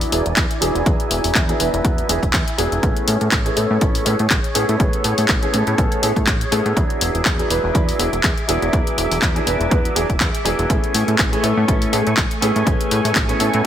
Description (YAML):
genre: filtered disco house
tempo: 122 BPM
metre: 4/4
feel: swing 55% on 16ths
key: A major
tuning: A4 = 438 Hz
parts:
  - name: clear baby grand piano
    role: accompaniment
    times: 0.0-13.7 s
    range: F#3 to B4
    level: -22 LUFS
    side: right 1 dB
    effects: phaser, sidechain pumping, low-pass filter
  - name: string machine, full ensemble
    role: sustained chords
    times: 0.0-13.7 s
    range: A3 to D6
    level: -25 LUFS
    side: left 1 dB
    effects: ensemble chorus, vintage 12-bit sampler grit, sidechain pumping, low-pass filter
  - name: plucky analog bass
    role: bass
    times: 0.0-13.6 s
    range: E1 to A2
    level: -22 LUFS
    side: equal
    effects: sidechain pumping, low-pass filter
  - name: house drum kit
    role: drums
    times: 0.0-13.6 s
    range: handclaps, hi-hat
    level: -22 LUFS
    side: left 1 dB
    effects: sidechain pumping on hats, sidechain pumping on cymbals
  - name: electronic kick drum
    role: drums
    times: 0.4-13.3 s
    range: none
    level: -20 LUFS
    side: equal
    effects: none
room: light reverb, digital ambience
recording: none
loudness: -15 LUFS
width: side -10 dB against mid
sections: 0.0-13.7 A section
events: filter sweep 0.0-13.7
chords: 0.0 E7; 2.8 Amaj7; 6.8 E7; 10.7 Amaj7